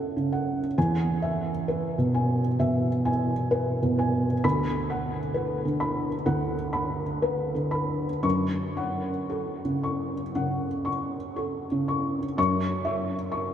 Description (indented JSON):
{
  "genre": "neoclassical minimalist piano",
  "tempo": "56-66 BPM",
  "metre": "4/4",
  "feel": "rubato",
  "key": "F# minor",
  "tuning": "A4 = 442 Hz",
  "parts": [
    { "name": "felt-muted upright piano", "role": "solo", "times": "0.0-13.5 s", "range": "D2 to C#6", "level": "-24 LUFS", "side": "equal", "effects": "wide subtle chorus, analog delay" }
  ],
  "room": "wet cathedral reverb, RT60 5.5 s",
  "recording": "dreamy mix soaked in reverb, nothing above 10.8 kHz",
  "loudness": "-24 LUFS",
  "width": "side -9 dB against mid",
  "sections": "0.0-12.4 A section; 12.4-13.5 A section",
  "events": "none",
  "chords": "0.0 F#m7; 0.8 E; 4.4 Bm/D; 8.2 F#m; 12.4 F#5",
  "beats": "| 0.77 1.68 2.59 3.51 | 4.44 5.35 6.26 7.22 | 8.24 9.30 10.34 11.36 | 12.38 13.32"
}